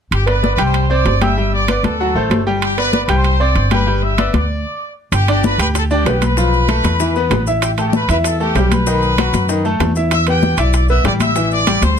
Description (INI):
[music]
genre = latin, salsa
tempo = 192 BPM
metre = 4/4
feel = straight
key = G major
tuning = A4 = 440 Hz
[part]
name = bright trumpet section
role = melody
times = 0.1-12.0 s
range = G4 to E6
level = -19 LUFS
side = left 1 dB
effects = none
[part]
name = upright bass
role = bass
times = 0.1-12.0 s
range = G1 to F#2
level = -17 LUFS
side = equal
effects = none
[part]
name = congas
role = percussion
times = 0.1-12.0 s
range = none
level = -21 LUFS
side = left 5 dB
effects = none
[part]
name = timbales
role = percussion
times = 0.1-12.0 s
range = none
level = -22 LUFS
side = right 10 dB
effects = none
[part]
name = bright grand piano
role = accompaniment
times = 0.3-11.9 s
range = D#3 to G5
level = -19 LUFS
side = left 1 dB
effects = none
[part]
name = bongos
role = percussion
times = 5.1-12.0 s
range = none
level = -25 LUFS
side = left 10 dB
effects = none
[part]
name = maracas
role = percussion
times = 5.1-12.0 s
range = none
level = -30 LUFS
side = left 6 dB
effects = none
[sound]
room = little or no reverb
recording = close, detailed microphones, lossy compression artefacts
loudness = -13 LUFS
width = side -7 dB against mid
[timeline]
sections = 0.1-5.1 A section; 5.1-12.0 B section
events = stop 4.5-5.1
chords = 0.1 G; 0.7 Cadd9; 1.4 G; 2.0 D7; 2.6 G; 4.5 N.C.; 5.1 G; 6.4 Fmaj7#11/B; 7.0 E5; 7.6 A5; 8.9 B7; 10.1 Em7; 11.4 Am7